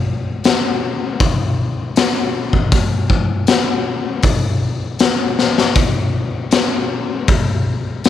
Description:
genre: rock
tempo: 79 BPM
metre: 4/4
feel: straight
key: none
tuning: none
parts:
  - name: raw garage drum kit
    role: drums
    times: 0.4-8.1 s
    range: hi-hat, kick drum, snare drum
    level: -14 LUFS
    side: left 2 dB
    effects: none
room: moderate echo chamber reverb, RT60 2.4 s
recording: 1960s-style stereo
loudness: -14 LUFS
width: side -11 dB against mid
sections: 0.0-8.1 A section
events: drum fill 5.4-5.8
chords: none

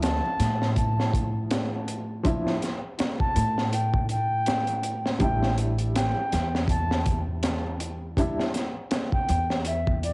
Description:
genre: trip hop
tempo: 81 BPM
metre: 4/4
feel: swing 57% on 16ths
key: D minor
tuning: A4 = 440 Hz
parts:
  - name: baroque flute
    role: melody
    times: 0.0-10.1 s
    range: D5 to A5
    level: -29 LUFS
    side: equal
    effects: vintage 12-bit sampler grit, cassette tape, tape echo
  - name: felt-muted upright piano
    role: accompaniment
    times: 0.0-8.5 s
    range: F3 to E4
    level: -32 LUFS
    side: equal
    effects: tremolo, tape echo
  - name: upright bass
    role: bass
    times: 0.0-10.1 s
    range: A1 to A2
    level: -27 LUFS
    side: equal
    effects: none
  - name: crunchy breakbeat drum kit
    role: drums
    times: 0.0-10.1 s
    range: hi-hat, kick drum, snare drum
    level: -27 LUFS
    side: equal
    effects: cassette tape
room: small room ambience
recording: home recording on cassette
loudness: -23 LUFS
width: side -27 dB against mid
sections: 0.0-10.1 A section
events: none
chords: 0.0 Dmadd9; 5.2 A7sus4

